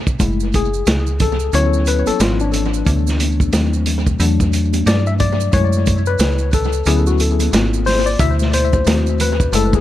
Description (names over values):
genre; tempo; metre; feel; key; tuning
hip hop, jazz-hop; 90 BPM; 4/4; swing 59% on 16ths; F# minor; A4 = 439 Hz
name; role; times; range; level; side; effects
vintage drum kit; drums; 0.1-9.8 s; hi-hat, kick drum, snare drum; -19 LUFS; right 1 dB; tape echo
maracas and congas; percussion; 0.1-9.8 s; none; -29 LUFS; right 11 dB; tape echo
tine electric piano; accompaniment; 0.2-9.8 s; B2 to E5; -18 LUFS; left 6 dB; medium stereo tremolo, tape echo
metallic FM bass; bass; 0.2-9.8 s; F#1 to G2; -17 LUFS; right 1 dB; none
room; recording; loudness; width
studio ambience; echo-heavy mix; -14 LUFS; side -13 dB against mid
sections
0.2-9.8 A section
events
break 0.0; tine electric piano solo 0.2-9.8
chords
0.2 F#m9; 1.5 Dmaj13; 2.2 G#6; 2.9 Asus24/D; 3.5 D#dim7; 4.2 E9sus4; 5.5 F#m9; 6.9 Dmaj13; 7.5 G#6; 8.2 Cmaj13/D; 8.9 D#dim7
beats
| 0.20 0.87 1.54 2.20 | 2.87 3.54 4.20 4.87 | 5.54 6.20 6.87 7.54 | 8.20 8.87 9.54